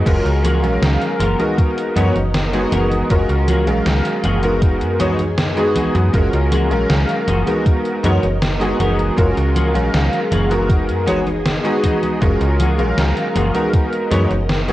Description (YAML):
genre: vaporwave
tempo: 79 BPM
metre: 4/4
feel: straight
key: F# major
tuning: A4 = 440 Hz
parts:
  - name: bright electric grand piano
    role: accompaniment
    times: 0.0-14.7 s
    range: F#3 to E#5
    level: -19 LUFS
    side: equal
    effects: ensemble chorus, analog delay
  - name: soft string machine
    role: sustained chords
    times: 0.0-14.7 s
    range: G#4 to A#5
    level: -27 LUFS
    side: equal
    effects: ensemble chorus, vintage 12-bit sampler grit
  - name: slap-like FM bass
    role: bass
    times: 0.0-14.7 s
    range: F#1 to F#2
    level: -19 LUFS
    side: equal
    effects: none
  - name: electronic kick drum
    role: drums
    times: 0.1-13.9 s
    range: none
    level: -15 LUFS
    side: equal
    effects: none
  - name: gated 80s digital drum machine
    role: drums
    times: 0.1-14.7 s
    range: congas, crash cymbal, hi-hat, snare drum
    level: -22 LUFS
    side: equal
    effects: gated reverb, gated reverb snare
  - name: clean electric guitar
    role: riff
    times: 0.4-14.3 s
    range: A#3 to A#4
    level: -28 LUFS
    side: left 2 dB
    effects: ensemble chorus, vintage 12-bit sampler grit, analog delay
room: light reverb, digital ambience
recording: worn, warbling old tape, cassette tape, warbly pitch drift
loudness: -14 LUFS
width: side -15 dB against mid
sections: 0.1-14.7 A section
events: none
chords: 0.1 F#maj9; 1.6 C#13sus4/F#; 3.1 F#maj9; 4.6 G#m7/F#; 6.1 F#maj9; 7.7 C#13sus4/F#; 9.2 F#maj9; 10.7 G#m7/F#; 12.2 F#maj9; 13.7 C#13sus4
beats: | 0.06 0.82 1.58 2.34 | 3.10 3.86 4.62 5.38 | 6.14 6.90 7.66 8.42 | 9.18 9.94 10.70 11.46 | 12.21 12.97 13.73 14.49